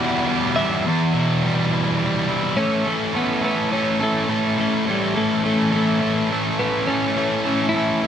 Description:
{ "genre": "rock", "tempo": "70 BPM (dotted quarters)", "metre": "6/8", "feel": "straight", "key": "A mixolydian", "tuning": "A4 = 437 Hz", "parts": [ { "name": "twelve-string electric guitar", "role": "melody", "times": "0.0-8.1 s", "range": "G3 to F#5", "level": "-23 LUFS", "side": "left 1 dB", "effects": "digital delay" }, { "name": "thick fuzz guitar", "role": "riff", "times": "0.0-8.1 s", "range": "E2 to A4", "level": "-19 LUFS", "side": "equal", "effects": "distortion" } ], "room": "moderate studio reverb, RT60 0.6 s", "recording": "rough home demo mix", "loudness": "-18 LUFS", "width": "side -9 dB against mid", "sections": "0.9-2.6 A section; 2.6-8.1 B section", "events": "none", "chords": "0.0 Em; 2.6 A", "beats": "| 0.85 1.71 | 2.57 3.43 | 4.29 5.15 | 6.02 6.88 | 7.74" }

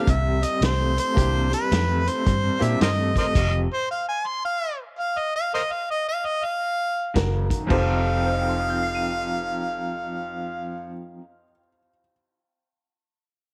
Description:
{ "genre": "electric blues shuffle", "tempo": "110 BPM", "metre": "4/4", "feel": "swing 64% on 8ths", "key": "F mixolydian", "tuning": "A4 = 438 Hz", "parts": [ { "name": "warm harmonica", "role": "melody", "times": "0.0-10.9 s", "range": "Bb4 to C6", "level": "-28 LUFS", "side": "equal", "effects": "overdrive" }, { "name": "bright concert grand piano", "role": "accompaniment", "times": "0.0-2.8, 7.7-12.1 s", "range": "F2 to Eb7", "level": "-34 LUFS", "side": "equal", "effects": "none" }, { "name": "electric guitar through a small old amp", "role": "riff", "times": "0.0-3.7, 7.1-11.2 s", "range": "F2 to A4", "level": "-32 LUFS", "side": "equal", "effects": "tremolo" }, { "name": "vintage muted fingered electric bass", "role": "bass", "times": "0.1-3.7, 7.2-10.9 s", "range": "F1 to Bb2", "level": "-27 LUFS", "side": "equal", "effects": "none" }, { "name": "vintage drum kit", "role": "drums", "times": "0.1-3.5, 7.2-7.9 s", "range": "crash cymbal, hi-hat, kick drum, snare drum", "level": "-28 LUFS", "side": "equal", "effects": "none" }, { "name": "clear upright piano", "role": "second line", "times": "7.2-10.9 s", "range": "Gb4 to C5", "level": "-32 LUFS", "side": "equal", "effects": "none" } ], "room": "light reverb, small room ambience", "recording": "none", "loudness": "-24 LUFS", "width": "mono", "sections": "0.0-7.7 A section; 7.7-12.1 B section", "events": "stop 3.4-7.2", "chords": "0.0 C7; 3.4 F5; 7.2 Gb; 7.7 F7", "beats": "0.09 0.63 | 1.17 1.72 2.26 2.81 | 3.35 3.89 4.44 4.98 | 5.53 6.07 6.62 7.16 | 7.71 8.25 8.79 9.34 | 9.88 10.43 10.98 11.52" }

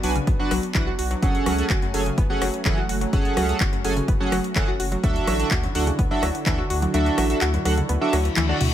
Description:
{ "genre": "progressive house", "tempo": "126 BPM", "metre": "4/4", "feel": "straight", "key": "F# minor", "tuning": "A4 = 442 Hz", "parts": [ { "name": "warm analog pad", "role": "sustained chords", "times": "0.0-8.7 s", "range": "D3 to G#5", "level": "-31 LUFS", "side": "equal", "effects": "chorus, sidechain pumping" }, { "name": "analog pluck", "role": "arpeggios", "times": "0.0-8.7 s", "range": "F#2 to F#5", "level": "-27 LUFS", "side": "equal", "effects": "chorus, vintage 12-bit sampler grit, sidechain pumping, ping-pong delay" }, { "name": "chorused polysynth", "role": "stabs", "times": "0.0-8.6 s", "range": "C#4 to G#5", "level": "-26 LUFS", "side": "right 3 dB", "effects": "cassette tape, sidechain pumping, ping-pong delay" }, { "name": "saturated sub bass", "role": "bass", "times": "0.0-8.7 s", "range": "F#1 to D2", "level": "-26 LUFS", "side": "equal", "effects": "sidechain pumping" }, { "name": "house drum kit", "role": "drums", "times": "0.0-8.7 s", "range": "handclaps, hi-hat, rim click, toms", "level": "-29 LUFS", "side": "left 1 dB", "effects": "studio reverb" }, { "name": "electronic kick drum", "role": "drums", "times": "0.3-6.6 s", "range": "none", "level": "-24 LUFS", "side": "equal", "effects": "studio reverb" }, { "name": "reverse cymbal", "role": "sound effects", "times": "8.1-8.7 s", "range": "none", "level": "-31 LUFS", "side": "left 7 dB", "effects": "none" } ], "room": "digital ambience", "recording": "none", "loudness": "-20 LUFS", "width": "side -11 dB against mid", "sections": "0.0-8.7 A section", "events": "kick drops out 6.9-8.7; reverse cymbal 8.1-8.7; drum fill 8.4-8.7", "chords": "0.0 Bm; 1.2 F#madd9; 5.0 Dadd9", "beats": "0.27 0.75 | 1.23 1.70 2.18 2.65 | 3.13 3.61 4.08 4.56 | 5.04 5.51 5.99 6.46 | 6.94 7.42 7.89 8.37" }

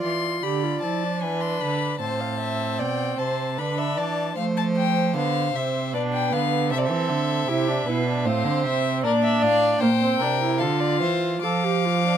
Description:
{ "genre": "classical, baroque-style fugue for string quartet", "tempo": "76 BPM", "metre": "3/4", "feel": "straight", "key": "D minor", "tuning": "A4 = 440 Hz", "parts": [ { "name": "rich violin", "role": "melody", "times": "0.0-12.2 s", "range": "D5 to D6", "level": "-27 LUFS", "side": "left 8 dB", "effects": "none" }, { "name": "rich violin", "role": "second line", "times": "0.0-12.2 s", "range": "G4 to F5", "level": "-29 LUFS", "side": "left 2 dB", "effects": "none" }, { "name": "warm viola", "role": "accompaniment", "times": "0.0-12.1 s", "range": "A3 to A4", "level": "-26 LUFS", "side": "right 2 dB", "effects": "none" }, { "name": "rich cello", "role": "bass", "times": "0.0-12.2 s", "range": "A2 to F3", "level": "-26 LUFS", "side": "right 4 dB", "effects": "none" } ], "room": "little or no reverb", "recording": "close, detailed microphones", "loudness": "-21 LUFS", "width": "side -9 dB against mid", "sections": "0.0-12.2 A section", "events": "none", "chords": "0.0 Dm; 1.2 E; 2.0 F/A (rootless); 3.6 Asus24/D; 4.4 Dm/F; 5.9 G/B; 6.7 C; 8.3 F/A; 9.0 Bb; 11.4 Csus4/F (rootless)", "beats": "0.43 1.22 | 2.01 2.80 3.59 | 4.37 5.15 5.93 | 6.71 7.48 8.25 | 9.04 9.81 10.60 | 11.42" }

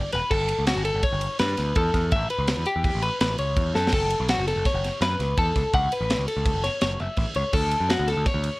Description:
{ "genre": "math rock and midwest emo", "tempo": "166 BPM", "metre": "5/4", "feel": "straight", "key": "unclear", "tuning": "A4 = 440 Hz", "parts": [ { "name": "twelve-string electric guitar", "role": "arpeggios", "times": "0.0-8.6 s", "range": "F#4 to F#5", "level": "-25 LUFS", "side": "left 2 dB", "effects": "none" }, { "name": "growling picked electric bass", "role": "bass", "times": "0.1-8.5 s", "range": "E1 to G2", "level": "-27 LUFS", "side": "right 1 dB", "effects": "overdrive" }, { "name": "crisp fusion drum kit", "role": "drums", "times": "0.1-8.5 s", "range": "crash cymbal, kick drum, ride cymbal, snare drum", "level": "-26 LUFS", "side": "equal", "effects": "none" } ], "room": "light reverb", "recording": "worn, warbling old tape, cassette tape, warbly pitch drift", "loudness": "-21 LUFS", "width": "side -21 dB against mid", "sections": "0.0-8.6 A section", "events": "drum fill 3.8", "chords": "0.3 Gadd9; 2.1 A9; 3.9 F#m7; 7.5 Dmaj7", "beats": "| 0.31 0.68 1.04 1.40 1.76 | 2.12 2.49 2.85 3.21 3.57 | 3.93 4.29 4.66 5.02 5.38 | 5.74 6.10 6.46 6.82 7.18 | 7.54 7.91 8.27" }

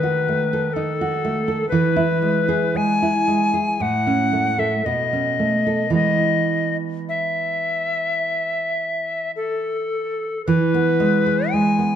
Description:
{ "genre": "romantic duo for recorder and classical guitar", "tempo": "51-64 BPM", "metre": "4/4", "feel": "rubato", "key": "E major", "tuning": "A4 = 440 Hz", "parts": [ { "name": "bright tenor recorder", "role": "melody", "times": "0.0-12.0 s", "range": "A4 to G#5", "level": "-21 LUFS", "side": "left 4 dB", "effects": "none" }, { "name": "nylon-string guitar", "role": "accompaniment", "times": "0.0-12.0 s", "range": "A2 to A4", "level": "-20 LUFS", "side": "right 4 dB", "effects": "none" } ], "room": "wet recital hall reverb, RT60 1.6 s", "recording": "dark, warm production", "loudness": "-18 LUFS", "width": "side -9 dB against mid", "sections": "0.0-10.5 A section; 10.5-12.0 A section", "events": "none", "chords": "0.0 B7/D#; 1.7 E; 3.8 A; 4.9 B9; 5.9 E", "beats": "0.75 | 1.70 2.77 3.80 4.85 | 5.95 7.10 8.25 9.36 | 10.46 11.52" }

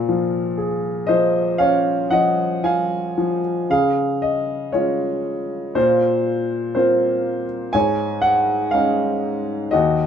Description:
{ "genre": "classical, lyrical solo piano", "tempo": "56-62 BPM", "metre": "4/4", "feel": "rubato", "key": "Bb minor, Db major from 3.7 s", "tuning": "A4 = 441 Hz", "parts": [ { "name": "warm grand piano", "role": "solo", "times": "0.0-10.1 s", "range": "Eb2 to Ab5", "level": "-17 LUFS", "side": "equal", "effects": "none" } ], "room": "moderate studio reverb, RT60 0.7 s", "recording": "minimal, uncompressed stereo recording", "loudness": "-17 LUFS", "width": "side -8 dB against mid", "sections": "0.0-3.7 A section; 3.7-10.1 B section", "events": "none", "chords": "0.0 Bbm7; 3.7 Db; 5.8 Bbsus2; 7.7 Absus4", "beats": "0.57 1.59 2.64 | 3.70 4.74 5.76 6.76 | 7.75 8.73 9.73" }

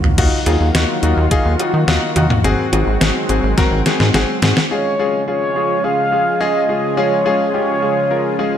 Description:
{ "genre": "synth-pop", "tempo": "106 BPM", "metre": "4/4", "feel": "straight", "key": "unclear", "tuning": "A4 = 442 Hz", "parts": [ { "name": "lush unison pad", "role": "sustained chords", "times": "0.0-8.6 s", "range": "Db3 to Ab4", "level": "-21 LUFS", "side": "equal", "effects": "chorus" }, { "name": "detuned 8-bit digital drum machine", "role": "drums", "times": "0.0-4.7 s", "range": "cowbell, crash cymbal, hi-hat, kick drum, snare drum, toms", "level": "-17 LUFS", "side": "equal", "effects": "none" }, { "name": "clear concert grand piano", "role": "accompaniment", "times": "0.2-8.6 s", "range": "Ab3 to Bb4", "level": "-19 LUFS", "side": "left 3 dB", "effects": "none" }, { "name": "rubbery square bass", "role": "bass", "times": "0.2-4.5 s", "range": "Ab1 to Eb3", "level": "-17 LUFS", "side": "equal", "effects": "none" }, { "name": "mellow horn-like synth lead", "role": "melody", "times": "4.7-8.6 s", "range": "Db5 to F5", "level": "-18 LUFS", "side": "right 1 dB", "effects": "chorus, ping-pong delay" } ], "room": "light reverb", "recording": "none", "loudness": "-13 LUFS", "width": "side -9 dB against mid", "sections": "0.2-4.7 A section; 4.7-8.6 B section", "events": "drum fill 0.0, 3.6-4.7", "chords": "0.2 Ebmadd9; 2.4 Ab7; 4.7 Db", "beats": "| 0.18 0.75 1.31 1.88 | 2.44 3.01 3.58 4.14 | 4.71 5.28 5.84 6.41 | 6.97 7.54 8.11" }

